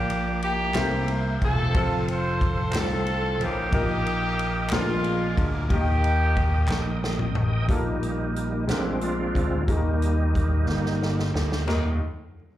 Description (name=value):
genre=slow gospel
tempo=60 BPM (dotted quarters)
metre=6/8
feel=straight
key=Eb major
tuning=A4 = 441 Hz
part: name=warm horn section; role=melody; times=0.0-7.0 s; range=Ab3 to C5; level=-27 LUFS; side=equal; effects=slapback echo
part: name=clear grand piano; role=accompaniment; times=0.0-12.0 s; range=Eb2 to E5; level=-32 LUFS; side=left 3 dB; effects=slapback echo
part: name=bright tonewheel organ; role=sustained chords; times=0.0-12.0 s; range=G3 to Eb6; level=-32 LUFS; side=right 2 dB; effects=slow rotary speaker, chorus vibrato
part: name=vintage slap bass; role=bass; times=0.0-12.0 s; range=E1 to Eb2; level=-26 LUFS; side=equal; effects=none
part: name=swinging big-band drum kit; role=drums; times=0.1-11.8 s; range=crash cymbal, hi-hat, kick drum, ride cymbal, snare drum, toms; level=-28 LUFS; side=equal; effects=none
part: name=group handclap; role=percussion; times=0.7-7.0 s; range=none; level=-36 LUFS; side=right 1 dB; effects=slapback echo
room=light reverb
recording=live gig heard through the venue's PA, club reverb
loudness=-22 LUFS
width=side -13 dB against mid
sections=0.0-7.7 A section; 7.7-11.7 B section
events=drum fill 6.7-7.7, 10.7-11.7; tonewheel organ solo 7.7-11.7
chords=0.0 Bb; 0.7 C7; 1.7 F; 3.7 Eb/Bb; 4.7 Bb7; 5.7 Eb; 7.7 Eb/Bb; 8.7 Bb7; 9.7 Eb